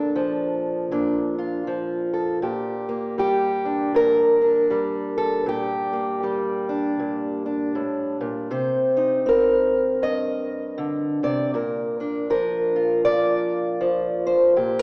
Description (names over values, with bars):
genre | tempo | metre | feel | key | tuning
folk, solo fingerstyle acoustic guitar | 79 BPM | 4/4 | swing 60% on 8ths | unclear | A4 = 440 Hz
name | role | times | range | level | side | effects
fingerpicked acoustic archtop guitar | solo | 0.0-14.8 s | G2 to Eb5 | -20 LUFS | equal | none
room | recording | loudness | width
wet recital hall reverb, RT60 1.5 s | recorded in a church or concert hall, small speaker sound | -20 LUFS | side -34 dB against mid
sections
0.0-14.8 A section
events
none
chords
0.0 Bbmaj7; 2.4 Gmadd9/Bb; 8.5 Cm7; 11.5 Bb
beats
0.15 0.91 1.67 | 2.43 3.19 3.95 4.71 | 5.47 6.23 6.99 7.74 | 8.50 9.26 10.02 10.78 | 11.54 12.29 13.05 13.81 | 14.57